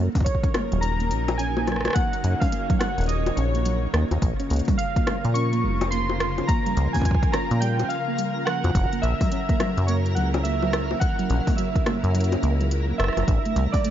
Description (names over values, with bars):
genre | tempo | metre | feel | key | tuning
IDM | 106 BPM | 4/4 | swing 62% on 16ths | unclear | A4 = 440 Hz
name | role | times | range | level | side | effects
soft string machine | sustained chords | 0.0-13.9 s | C3 to A5 | -31 LUFS | equal | ensemble chorus
soft round pluck | arpeggios | 0.0-13.9 s | F3 to D4 | -30 LUFS | right 3 dB | lush chorus, dub echo
deep acid bass | bass | 0.0-13.7 s | Eb1 to Bb2 | -23 LUFS | equal | none
twinkling granular texture | texture | 0.2-13.9 s | Bb4 | -39 LUFS | equal | built-in reverb
warbly lo-fi synth keys | melody | 0.2-13.9 s | Db5 to Db6 | -29 LUFS | right 2 dB | chorus, vintage 12-bit sampler grit, dub echo
electronic kick drum | drums | 0.2-13.8 s | none | -23 LUFS | equal | overdrive, studio ambience
organic electronic drum kit | drums | 0.2-13.9 s | bongos, hi-hat, rim click, toms | -29 LUFS | left 2 dB | overdrive, studio ambience
room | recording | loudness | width
digital ambience | dark, warm production, nothing above 7.4 kHz | -21 LUFS | side -11 dB against mid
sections
0.0-13.9 A section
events
none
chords
0.0 Ebm7; 4.2 Bbm; 8.8 F#7; 13.3 Am